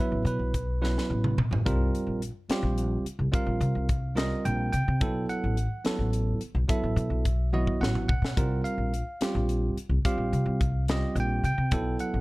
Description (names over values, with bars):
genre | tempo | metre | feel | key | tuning
electric jazz fusion | 72 BPM (dotted quarters) | 6/8 | straight | unclear | A4 = 440 Hz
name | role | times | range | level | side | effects
bell-like tine electric piano | accompaniment | 0.0-12.2 s | F#3 to G5 | -30 LUFS | right 2 dB | none
upright bass | bass | 0.1-12.2 s | A1 to C3 | -28 LUFS | equal | none
crisp fusion drum kit | drums | 0.3-12.1 s | hi-hat, kick drum, snare drum, toms | -30 LUFS | equal | none
room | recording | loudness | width
little or no reverb | dark, warm production | -25 LUFS | side -21 dB against mid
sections
0.0-12.2 A section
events
drum fill 0.8-1.7, 7.5-8.4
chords
0.0 B7sus4; 1.7 C7sus4; 5.0 B7sus4; 8.4 C7sus4